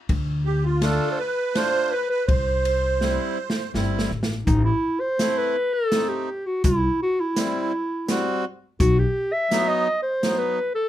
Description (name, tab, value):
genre	klezmer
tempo	83 BPM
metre	3/4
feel	straight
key	C major, A dorian sharp4 from 4.5 s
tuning	A4 = 440 Hz
part	upright bass	bass	0.1-9.0 s	G1 to D2	-23 LUFS	left 1 dB	none
part	open jazz drum kit	drums	0.1-10.4 s	hi-hat, kick drum, ride cymbal, snare drum	-25 LUFS	equal	none
part	mellow clarinet	melody	0.5-10.9 s	D#4 to E5	-23 LUFS	equal	none
part	musette accordion	second line	0.5-3.7 s	F4 to C5	-28 LUFS	right 8 dB	none
part	accordion	accompaniment	0.8-10.6 s	F#3 to F#4	-27 LUFS	equal	none
room	light reverb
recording	close, detailed microphones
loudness	-20 LUFS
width	side -12 dB against mid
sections	0.0-4.5 A section; 4.5-10.9 B section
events	speeding up 0.0-10.9; drum fill 3.0-4.5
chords	0.1 Dm; 2.3 C; 4.5 Am; 6.6 C; 8.8 B